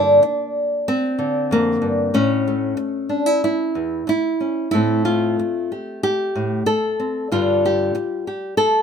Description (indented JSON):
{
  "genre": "folk, solo fingerstyle acoustic guitar",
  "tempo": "94 BPM",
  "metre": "4/4",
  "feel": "rubato",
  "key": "unclear",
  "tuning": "A4 = 435 Hz",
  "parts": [
    { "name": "nylon-string guitar", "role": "solo", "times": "0.0-8.8 s", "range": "E2 to A4", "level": "-17 LUFS", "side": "equal", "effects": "none" }
  ],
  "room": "moderate studio reverb, RT60 0.8 s",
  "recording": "minimal, uncompressed stereo recording",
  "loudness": "-18 LUFS",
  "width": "side -7 dB against mid",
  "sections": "0.0-8.8 A section",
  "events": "none",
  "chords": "0.0 Gm; 2.1 A; 4.7 Am7; 7.3 G5"
}